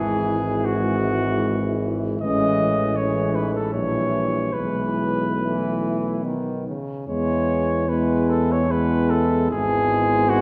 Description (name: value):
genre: classical, hymn-like piece for brass band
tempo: 70-80 BPM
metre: 3/4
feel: rubato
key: E major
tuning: A4 = 442 Hz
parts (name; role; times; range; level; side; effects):
- warm flugelhorn; melody; 0.0-10.4 s; F#4 to D#5; -27 LUFS; equal; none
- mellow French horn section; second line; 0.0-10.4 s; C#4 to E4; -32 LUFS; equal; none
- clear trombone; accompaniment; 0.0-10.4 s; C#3 to G#3; -31 LUFS; equal; none
- mellow euphonium; accompaniment; 0.0-10.4 s; G3 to B3; -29 LUFS; equal; none
- mellow tuba; bass; 0.0-10.4 s; G#1 to E2; -27 LUFS; equal; none
room: wet scoring stage reverb, RT60 1.7 s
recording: heard from further back in the room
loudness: -22 LUFS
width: mono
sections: 0.0-10.4 A section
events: none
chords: 0.0 E/G#; 2.2 Amaj7; 3.7 A#dim7; 4.5 E/B; 6.2 B; 7.1 E; 9.5 E/G#